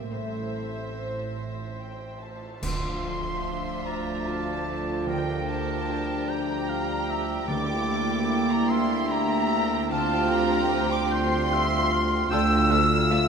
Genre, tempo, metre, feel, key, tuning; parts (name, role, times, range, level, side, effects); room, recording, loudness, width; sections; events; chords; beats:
cinematic, emotional film score for orchestra; 50 BPM (dotted quarters); 6/8; rubato; D minor; A4 = 440 Hz
dark studio violin section; melody; 0.0-13.3 s; E5 to E6; -32 LUFS; left 4 dB
dark studio violin section; second line; 0.0-13.2 s; F4 to G5; -34 LUFS; right 1 dB
warm studio viola section; accompaniment; 0.0-13.2 s; F3 to C5; -30 LUFS; right 2 dB
concert harp; arpeggios; 0.0-13.3 s; A2 to E5; -37 LUFS; left 5 dB
warm studio cello section; bass; 0.0-13.3 s; D2 to A2; -31 LUFS; equal
warm studio double bass section; bass; 0.0-13.3 s; A1 to D2; -33 LUFS; right 5 dB
dark French horn section; sustained chords; 0.1-13.3 s; F3 to F4; -35 LUFS; left 4 dB
cymbal swell, clash cymbals and concert bass drum; percussion; 0.1-4.2 s; -38 LUFS; right 1 dB
silver concert flute; second line; 2.6-13.3 s; G5 to E6; -31 LUFS; equal
timpani; percussion; 2.6-8.7 s; D3; -38 LUFS; right 1 dB
warm oboe; second line; 3.9-13.3 s; Bb4 to G5; -33 LUFS; right 4 dB
wet scoring stage reverb, RT60 1.9 s; -23 LUFS; side -6 dB against mid
0.0-2.6 A section; 2.6-13.3 B section
band accent 2.6-3.5
0.1 Am; 2.6 Dmadd9; 5.1 Gmadd9/D; 7.5 Em7b5/D; 9.9 Csus4/D; 12.3 Dmadd9
| 0.10 1.38 | 2.63 3.87 | 5.08 6.29 | 7.49 8.70 | 9.90 11.11 | 12.30